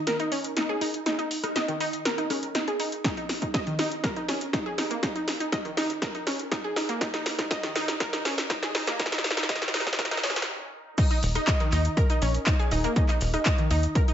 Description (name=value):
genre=progressive house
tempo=121 BPM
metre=4/4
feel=straight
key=unclear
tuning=A4 = 441 Hz
part: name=wide unison pluck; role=arpeggios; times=0.1-14.1 s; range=Eb3 to Eb6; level=-29 LUFS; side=equal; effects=sidechain pumping, dub echo
part: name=deep house drum kit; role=drums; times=0.1-14.1 s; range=crash cymbal, handclaps, hi-hat, rim click, shaker, snare drum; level=-29 LUFS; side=equal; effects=overdrive
part: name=electronic kick drum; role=drums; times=3.0-14.1 s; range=none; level=-26 LUFS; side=equal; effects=overdrive
part: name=tight sequencer bass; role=bass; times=11.2-13.9 s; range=Eb1 to Eb2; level=-25 LUFS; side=equal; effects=sidechain pumping
room=moderate digital room reverb, RT60 1.1 s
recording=high-pass filter, nothing above 7.8 kHz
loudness=-24 LUFS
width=side -10 dB against mid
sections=0.0-11.0 A section; 11.0-14.1 B section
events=build-up 0.0-11.0; drum fill 0.0-10.5; filter sweep 0.0-11.0; stop 10.5-11.0; drop 11.0-14.1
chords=none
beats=0.07 0.57 | 1.06 1.56 2.05 2.55 | 3.04 3.54 4.04 4.53 | 5.03 5.52 6.02 6.52 | 7.01 7.51 8.00 8.50 | 9.00 9.49 9.99 10.48 | 10.98 11.47 11.97 12.47 | 12.96 13.46 13.95